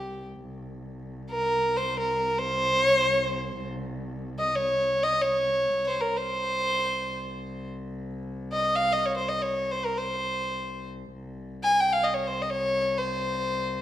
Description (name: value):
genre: Turkish makam ensemble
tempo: free time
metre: none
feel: none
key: C makam kurdi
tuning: A4 = 439 Hz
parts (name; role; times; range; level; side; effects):
- warm violin; melody; 0.0-13.8 s; G4 to Ab5; -24 LUFS; equal; none
- warm cello; drone; 0.0-13.8 s; C2; -36 LUFS; left 1 dB; none
room: moderate recital hall reverb, RT60 1.4 s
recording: none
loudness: -24 LUFS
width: side -12 dB against mid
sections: 0.0-13.8 A section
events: none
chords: none